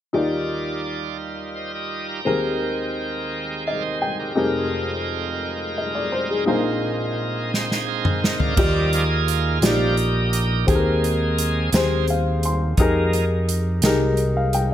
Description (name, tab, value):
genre	slow gospel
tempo	57 BPM (dotted quarters)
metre	6/8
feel	straight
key	Eb major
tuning	A4 = 439 Hz
part	warm upright piano	accompaniment	0.1-14.7 s	F1 to C6	-23 LUFS	left 2 dB	none
part	bright tonewheel organ	sustained chords	0.1-13.3 s	Eb3 to Bb5	-25 LUFS	right 3 dB	fast rotary speaker, overdrive
part	natural country drum kit	drums	7.5-14.7 s	crash cymbal, hi-hat, kick drum, snare drum, toms	-22 LUFS	right 1 dB	none
part	fingered electric bass	bass	8.6-14.7 s	Bb1 to F2	-22 LUFS	equal	none
room	light reverb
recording	none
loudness	-19 LUFS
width	side -11 dB against mid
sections	0.1-8.6 A section; 8.6-14.7 B section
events	upright piano fill 3.3-4.4, 11.7-12.8; drum fill 7.5-8.6; tonewheel organ solo 8.6-14.7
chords	0.1 Ebmaj9; 2.2 Abmaj9/Eb; 4.4 Fm11; 6.5 Bb9sus4; 8.6 Ebmaj9; 10.7 Abmaj9/Eb; 12.8 Fm11